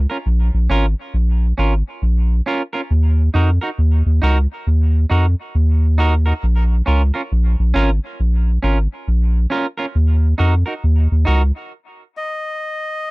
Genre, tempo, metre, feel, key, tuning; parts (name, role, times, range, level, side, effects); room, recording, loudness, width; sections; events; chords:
dub reggae; 68 BPM; 4/4; swing 63% on 16ths; Bb minor; A4 = 440 Hz
soft dub sub bass; bass; 0.0-11.5 s; Ab1 to F2; -14 LUFS; equal
clean electric guitar; accompaniment; 0.1-11.4 s; Db4 to Bb4; -22 LUFS; right 2 dB; dub echo
melodica; melody; 12.2-13.1 s; Eb5; -22 LUFS; left 2 dB; dub echo
little or no reverb; dry, close 1970s-style studio recording; -15 LUFS; side -24 dB against mid
0.0-13.1 A section
stop 11.7-13.1
0.0 Bbm; 2.9 Ebm; 6.4 Bbm; 9.9 Ebm